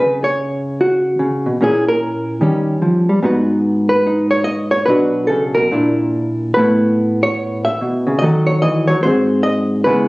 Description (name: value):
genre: solo jazz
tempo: 146 BPM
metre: 4/4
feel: swing 64% on 8ths, rubato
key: unclear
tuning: A4 = 440 Hz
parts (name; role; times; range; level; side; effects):
- hollow-body jazz guitar; solo; 0.0-10.1 s; G#2 to E5; -13 LUFS; equal; none
room: light reverb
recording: recorded on a phone in the room, studio reverb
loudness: -13 LUFS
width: side -22 dB against mid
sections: 0.0-10.1 A section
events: none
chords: 0.0 Bsus2; 1.6 A#dim; 2.4 D#7; 3.2 G#m7; 4.9 Bm; 5.7 A#; 6.6 Aadd9; 8.2 D#dim; 9.0 G#7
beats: 0.38 0.79 1.20 | 1.61 2.02 2.42 2.83 | 3.23 3.64 4.05 4.46 | 4.87 5.29 5.71 6.13 | 6.56 6.98 7.40 7.81 | 8.23 8.64 9.04 9.44 | 9.86